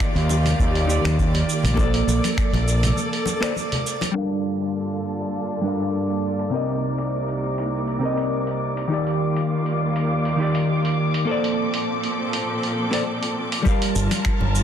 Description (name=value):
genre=sunset chillout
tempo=101 BPM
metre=4/4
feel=swing 54% on 16ths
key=G minor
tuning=A4 = 441 Hz
part: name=vintage hollow-body jazz guitar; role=accompaniment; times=0.0-14.6 s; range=C3 to F5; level=-24 LUFS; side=moving between left 2 dB and right 6 dB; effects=auto-pan, tape echo
part: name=rich studio string section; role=sustained chords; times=0.0-14.6 s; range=C2 to D6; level=-26 LUFS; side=equal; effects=none
part: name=dusty soul sampler-style drum kit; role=drums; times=0.0-14.6 s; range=finger snaps, hi-hat, shaker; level=-30 LUFS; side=right 2 dB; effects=low-pass filter on hats, low-pass filter on perc, soft clipping on snare, low-pass filter on snare, low-pass filter on room
part: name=electronic kick drum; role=drums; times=0.0-2.5, 13.7-14.4 s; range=none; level=-23 LUFS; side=equal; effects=overdrive
part: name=drifting glass-harmonics texture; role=texture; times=0.0-13.7 s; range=D5 to D6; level=-33 LUFS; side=right 2 dB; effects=chorus, built-in reverb
part: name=growling fingered electric bass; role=bass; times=0.2-2.9, 14.0-14.6 s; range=G1 to Eb2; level=-20 LUFS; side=equal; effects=overdrive
part: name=congas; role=percussion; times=0.3-4.1, 13.7-14.5 s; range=none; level=-30 LUFS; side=left 2 dB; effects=none
room=moderate lush hall reverb, RT60 2.3 s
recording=dense, heavily limited modern master, low-pass filter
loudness=-20 LUFS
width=side -9 dB against mid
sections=0.0-4.2 A section; 4.2-13.7 B section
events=break 3.0-4.2; filter sweep on drum 4.2-13.7; filter sweep 4.2-13.7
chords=0.0 Ebmaj7; 1.8 Bbmaj9; 4.2 Gm7; 6.5 Cm7; 8.9 Ebmaj7; 11.3 Bbmaj9; 13.7 Gm7